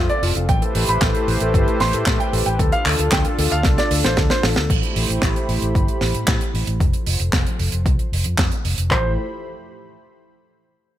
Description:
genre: italo disco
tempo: 114 BPM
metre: 4/4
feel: straight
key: A minor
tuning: A4 = 440 Hz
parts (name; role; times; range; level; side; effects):
- dark grand piano; melody; 0.0-4.7, 8.9-9.1 s; F4 to C6; -23 LUFS; left 1 dB; ping-pong delay
- warm analog pad; sustained chords; 0.0-9.2 s; F3 to C6; -26 LUFS; equal; chorus
- fingered electric bass with an envelope filter; bass; 0.0-9.2 s; F1 to A2; -22 LUFS; equal; none
- tight funk drum kit; drums; 0.1-8.9 s; crash cymbal, handclaps, hi-hat, snare drum; -23 LUFS; right 2 dB; small room ambience
- punchy analog drum machine; drums; 0.5-9.0 s; handclaps, kick drum; -21 LUFS; equal; small room ambience
room: light reverb, small room ambience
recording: none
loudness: -16 LUFS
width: side -12 dB against mid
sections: 0.0-4.7 A section; 4.7-8.9 B section; 8.9-11.0 C section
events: drum fill 3.6-4.7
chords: 0.5 Am7; 2.6 Dm; 4.7 Am7; 6.8 F; 8.9 Am7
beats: | 0.49 1.01 1.54 2.07 | 2.59 3.12 3.65 4.17 | 4.70 5.23 5.75 6.28 | 6.80 7.33 7.86 8.38 | 8.91

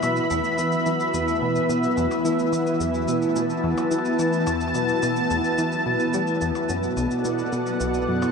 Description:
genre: ambient, sequencer-driven space music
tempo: 108 BPM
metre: 4/4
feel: straight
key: unclear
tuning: A4 = 439 Hz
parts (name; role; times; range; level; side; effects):
- lush unison pad; sustained chords; 0.0-8.3 s; B2 to B5; -22 LUFS; left 1 dB; chorus, shimmer reverb
- vibraphone with medium mallets; arpeggios; 0.0-8.3 s; F#3 to F#4; -29 LUFS; moving between left 1 dB and right 6 dB; auto-pan, tape echo, shimmer reverb
- plucky analog bass; riff; 0.0-8.3 s; B1 to G3; -28 LUFS; left 1 dB; wide subtle chorus, tape echo
- cabasa and percussion blips; percussion; 0.0-8.3 s; none; -38 LUFS; left 3 dB; tape echo
room: wet huge ambient reverb, RT60 8.9 s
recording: dreamy mix soaked in reverb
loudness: -21 LUFS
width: side -5 dB against mid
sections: 0.0-8.3 A section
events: none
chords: 0.0 E5; 6.7 Bm7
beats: | 0.03 0.58 1.14 1.69 | 2.25 2.80 3.36 3.91 | 4.47 5.03 5.58 6.14 | 6.69 7.25 7.80

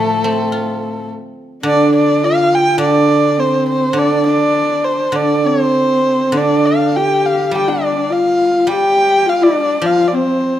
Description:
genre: chinese traditional, Chinese chamber ensemble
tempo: 104 BPM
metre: 4/4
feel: rubato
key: D yu mode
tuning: A4 = 441 Hz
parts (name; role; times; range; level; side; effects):
- dark erhu; melody; 0.0-10.6 s; A4 to G5; -16 LUFS; equal; none
- dark horsehead fiddle; second line; 0.0-10.6 s; A3 to G4; -17 LUFS; left 3 dB; none
- guzheng; accompaniment; 0.0-10.6 s; A2 to F4; -18 LUFS; right 2 dB; none
room: light reverb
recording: none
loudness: -12 LUFS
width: side -11 dB against mid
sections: 0.0-10.6 A section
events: none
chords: none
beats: 0.53 1.09 | 1.67 2.23 2.80 3.38 | 3.96 4.55 5.15 5.75 | 6.34 6.93 7.53 8.11 | 8.69 9.26 9.84 10.41

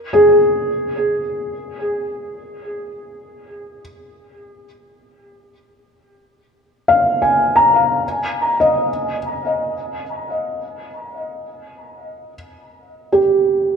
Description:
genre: ambient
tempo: free time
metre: none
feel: none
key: unclear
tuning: A4 = 440 Hz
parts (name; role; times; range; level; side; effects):
- felt-muted upright piano; solo; 0.0-13.8 s; G4 to Bb5; -16 LUFS; equal; diffuse ambient delay
room: wet concert hall reverb, RT60 2.5 s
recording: none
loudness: -15 LUFS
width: side -6 dB against mid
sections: 0.0-8.0 A section; 8.0-13.8 B section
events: none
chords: 0.0 Absus2; 8.0 N.C.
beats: free time

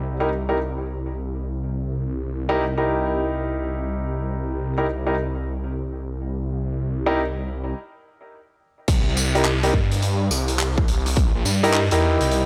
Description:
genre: glitch hop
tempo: 105 BPM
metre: 4/4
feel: swing 64% on 16ths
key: unclear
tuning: A4 = 440 Hz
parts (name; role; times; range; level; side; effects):
- warm grand piano; stabs; 0.0-12.5 s; D#4 to Bb4; -25 LUFS; equal; vintage 12-bit sampler grit, sidechain pumping, low-pass filter, analog delay
- phased detuned saw bass; bass; 0.0-12.5 s; Bb1 to G2; -26 LUFS; equal; phaser, tube saturation
- big rock drum kit; drums; 8.9-12.5 s; crash cymbal, handclaps, hi-hat, rim click, tambourine; -29 LUFS; equal; low-pass filter on cymbals, low-pass filter on hats, low-pass filter on snare, low-pass filter on perc, low-pass filter on room
- electronic kick drum; drums; 8.9-11.3 s; none; -22 LUFS; equal; none
room: small room ambience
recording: dry, gritty hardware recording, transformer saturation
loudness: -23 LUFS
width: mono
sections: 0.0-8.9 A section; 8.9-12.5 B section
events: filter sweep on grand piano 0.0-8.9; break 7.7-8.9; drop 8.9-12.5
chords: 0.0 C7#9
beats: 0.31 0.88 1.45 | 2.02 2.60 3.17 3.74 | 4.31 4.88 5.45 6.02 | 6.60 7.17 7.74 8.31 | 8.88 9.45 10.02 10.60 | 11.17 11.74 12.31

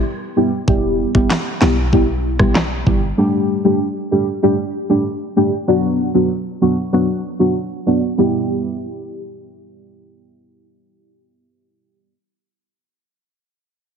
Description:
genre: dancehall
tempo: 96 BPM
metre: 4/4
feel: straight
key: E minor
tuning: A4 = 440 Hz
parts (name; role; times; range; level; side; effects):
- deep mellow chord stab; accompaniment; 0.0-12.1 s; F#3 to G4; -16 LUFS; equal; chorus, phaser
- warm 808-style bass; bass; 0.7-3.1 s; E1 to B1; -21 LUFS; equal; none
- pop drum kit; drums; 0.7-3.0 s; handclaps, kick drum, rim click, snare drum; -17 LUFS; equal; none
room: moderate lush hall reverb, RT60 1.9 s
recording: heavily compressed radio sound, multiband compression, low-pass filter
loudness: -15 LUFS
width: side -6 dB against mid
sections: 0.0-8.2 A section; 8.2-10.7 B section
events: filter sweep 0.0-8.2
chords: 0.0 Em; 3.2 Dsus4; 5.7 Bm; 8.2 Em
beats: 0.05 | 0.68 1.30 1.93 2.55 | 3.18 3.80 4.43 5.05 | 5.68 6.30 6.93 7.55 | 8.18 8.80 9.43 10.05

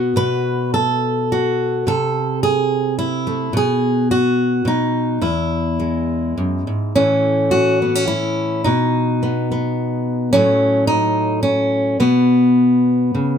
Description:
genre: folk, solo fingerstyle acoustic guitar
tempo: 107 BPM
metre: 3/4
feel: rubato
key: unclear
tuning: A4 = 440 Hz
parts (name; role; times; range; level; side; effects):
- fingerpicked steel-string acoustic guitar; solo; 0.0-13.4 s; E2 to B4; -15 LUFS; equal; none
room: little or no reverb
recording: close, detailed microphones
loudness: -15 LUFS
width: side -8 dB against mid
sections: 0.0-6.9 A section; 6.9-13.4 B section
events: none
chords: 0.0 N.C.; 1.9 Am/C; 3.5 N.C.; 5.2 E; 6.9 A; 8.6 N.C.; 10.3 F#m/A; 12.0 Bsus2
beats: | 0.16 0.73 1.30 | 1.87 2.43 2.99 | 3.55 4.10 4.66 | 5.21 5.78 6.36 | 6.94 7.51 8.09 | 8.65 9.21 9.76 | 10.32 10.88 11.43 | 11.99 12.56 13.14

